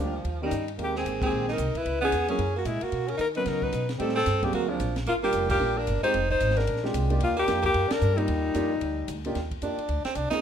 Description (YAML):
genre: jazz, small-group swing and bop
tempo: 224 BPM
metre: 4/4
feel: swing 61% on 8ths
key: Eb major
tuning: A4 = 440 Hz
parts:
  - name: breathy alto saxophone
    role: melody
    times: 0.0-9.2 s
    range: D4 to C5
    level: -28 LUFS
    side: left 3 dB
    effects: none
  - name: breathy tenor saxophone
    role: second line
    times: 0.0-10.4 s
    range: E#3 to Fb4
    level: -31 LUFS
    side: right 4 dB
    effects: none
  - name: warm grand piano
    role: accompaniment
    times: 0.0-10.4 s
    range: Eb3 to D5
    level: -32 LUFS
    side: right 2 dB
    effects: none
  - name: upright bass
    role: bass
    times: 0.0-10.3 s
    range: F1 to D#3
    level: -30 LUFS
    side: equal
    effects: none
  - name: compact cocktail drum kit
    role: drums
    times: 0.2-10.4 s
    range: crash cymbal, hi-hat, kick drum, ride cymbal, snare drum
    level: -38 LUFS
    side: equal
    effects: none
room: moderate large studio reverb, RT60 0.9 s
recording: minimal, uncompressed stereo recording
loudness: -24 LUFS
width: side -8 dB against mid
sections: 0.8-9.4 A section; 9.4-10.4 B section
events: band accent 1.2, 5.5, 7.9; tenor saxophone solo 9.4-10.4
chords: 0.2 Eb7; 0.8 Abmaj9; 1.9 Dbm7; 2.4 Gb; 2.9 Bmaj7; 4.0 Am7b5; 4.5 D7alt; 5.1 Gm7; 6.1 Fm7; 6.7 Bb13; 7.2 Ebmaj9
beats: 0.25 0.52 | 0.78 1.05 1.32 1.59 | 1.85 2.12 2.39 2.66 | 2.92 3.19 3.46 3.73 | 4.00 4.27 4.53 4.80 | 5.07 5.34 5.61 5.87 | 6.14 6.41 6.68 6.95 | 7.21 7.48 7.75 8.02 | 8.28 8.55 8.82 9.09 | 9.35 9.62 9.89 10.16